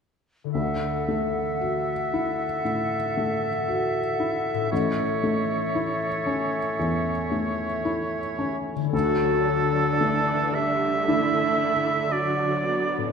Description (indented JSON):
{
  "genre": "cinematic, emotional film score for orchestra",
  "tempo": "57 BPM",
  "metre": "4/4",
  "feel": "rubato",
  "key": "D major",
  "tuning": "A4 = 440 Hz",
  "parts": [
    { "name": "concert harp", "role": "arpeggios", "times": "0.4-13.1 s", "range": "A2 to A4", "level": "-31 LUFS", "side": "left 10 dB", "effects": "none" },
    { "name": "bright clarinet", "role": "second line", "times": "0.5-8.6 s", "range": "A4", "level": "-33 LUFS", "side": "left 1 dB", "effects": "none" },
    { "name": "clear oboe", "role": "second line", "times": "0.5-13.1 s", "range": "A4 to E5", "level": "-27 LUFS", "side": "right 3 dB", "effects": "none" },
    { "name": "felt-muted upright piano", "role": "accompaniment", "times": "0.5-13.1 s", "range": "A1 to F#4", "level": "-28 LUFS", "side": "equal", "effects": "none" },
    { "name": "mellow concert flute", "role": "second line", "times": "0.6-8.6 s", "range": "E5 to F#5", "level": "-31 LUFS", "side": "left 4 dB", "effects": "none" },
    { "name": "warm symphonic viola section", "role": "accompaniment", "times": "8.9-13.1 s", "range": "E3 to F#4", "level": "-28 LUFS", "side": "right 2 dB", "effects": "none" },
    { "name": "warm symphonic cello section", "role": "bass", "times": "8.9-13.1 s", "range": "D3", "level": "-30 LUFS", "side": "right 2 dB", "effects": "none" }
  ],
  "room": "wet scoring stage reverb, RT60 2.0 s",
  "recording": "minimal, uncompressed stereo recording",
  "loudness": "-22 LUFS",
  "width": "side -6 dB against mid",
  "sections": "0.5-8.9 A section; 8.9-13.1 B section",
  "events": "none",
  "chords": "0.5 Dadd9; 4.7 A; 8.9 Dadd9",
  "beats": "| 0.54 1.60 2.64 3.67 | 4.71 5.75 6.79 7.86 | 8.93 10.01 11.08 12.12"
}